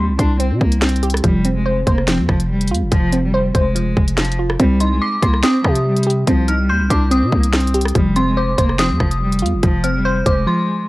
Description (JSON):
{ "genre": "hip hop, drill", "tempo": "143 BPM", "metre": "4/4", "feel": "half-time", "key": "unclear", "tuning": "A4 = 440 Hz", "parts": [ { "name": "dark cello", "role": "melody", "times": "0.0-10.9 s", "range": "F3 to D4", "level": "-22 LUFS", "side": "equal", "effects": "low-pass filter" }, { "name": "glassy wavetable pluck", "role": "accompaniment", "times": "0.0-10.9 s", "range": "F3 to C6", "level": "-21 LUFS", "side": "equal", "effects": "chorus, low-pass filter" }, { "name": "growling 808-style bass", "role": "bass", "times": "0.0-10.5 s", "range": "F1 to C3", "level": "-18 LUFS", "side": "equal", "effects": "none" }, { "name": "drill drum kit", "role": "drums", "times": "0.2-10.4 s", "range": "hi-hat, kick drum, rim click, snare drum", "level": "-18 LUFS", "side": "equal", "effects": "none" }, { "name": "dark detuned synth bell", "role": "second line", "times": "4.8-10.9 s", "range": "C6 to G6", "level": "-22 LUFS", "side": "left 1 dB", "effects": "chorus, tape echo" } ], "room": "little or no reverb", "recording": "dry, gritty hardware recording", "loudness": "-14 LUFS", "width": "side -19 dB against mid", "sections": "0.0-10.9 A section", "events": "break 10.5-10.9", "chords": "0.0 Cm; 1.2 Fm; 4.6 Cm; 8.0 Fm" }